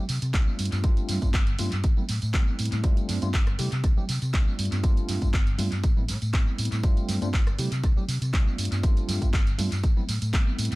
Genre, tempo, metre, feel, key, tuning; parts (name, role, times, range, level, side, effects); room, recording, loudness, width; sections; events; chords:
filtered disco house; 120 BPM; 4/4; swing 53% on 16ths; G mixolydian; A4 = 436 Hz
tine electric piano; accompaniment; 0.0-10.8 s; G3 to G4; -34 LUFS; equal; medium stereo tremolo, phaser, sidechain pumping, low-pass filter
hollow-body short-scale fingered electric bass; bass; 0.1-10.8 s; G1 to C3; -28 LUFS; equal; sidechain pumping, low-pass filter
punchy analog drum machine; drums; 0.1-10.8 s; handclaps, hi-hat, rim click, tambourine; -33 LUFS; right 1 dB; sidechain pumping on hats, sidechain pumping on perc, dub echo
maracas and congas; percussion; 0.1-10.8 s; -39 LUFS; right 4 dB
electronic kick drum; drums; 0.3-10.4 s; -23 LUFS; equal
digital ambience; echo-heavy mix; -22 LUFS; side -21 dB against mid
0.0-10.8 A section
filter sweep 0.0-10.8
0.0 C5; 0.6 G9sus4; 1.8 Am9; 2.8 G9sus4; 3.6 C6; 4.6 G9sus4; 5.8 Am9; 6.8 G9sus4; 7.6 C6; 8.6 G9sus4; 9.8 Am9